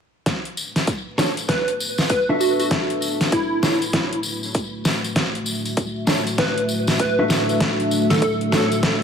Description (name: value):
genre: glitch hop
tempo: 98 BPM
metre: 4/4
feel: swing 63% on 16ths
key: B minor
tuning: A4 = 440 Hz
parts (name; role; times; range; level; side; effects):
- dark analog pad; sustained chords; 0.3-9.0 s; A3 to E5; -26 LUFS; left 1 dB; chorus, sidechain pumping
- dubstep drum kit; drums; 0.3-9.0 s; hi-hat, snare drum; -22 LUFS; equal; overdrive
- electronic kick drum; drums; 0.3-9.0 s; none; -26 LUFS; equal; overdrive, high-pass filter on kick, high-pass filter on room
- tambourine; percussion; 0.3-9.0 s; none; -30 LUFS; left 3 dB; tape echo
- mellow electric guitar; stabs; 1.2-8.6 s; D4 to E5; -24 LUFS; equal; sidechain pumping, tape echo
- plucky unison lead; melody; 1.5-9.0 s; E4 to B4; -23 LUFS; right 1 dB; analog chorus, vintage 12-bit sampler grit, tape echo
room: moderate plate reverb, RT60 2.5 s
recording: echo-heavy mix, vinyl crackle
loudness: -18 LUFS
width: side -7 dB against mid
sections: 0.3-9.0 A section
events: build-up 0.3-9.0; drum fill 0.3-9.0; filter sweep on analog synth pad 0.3-9.0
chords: 0.3 Bm7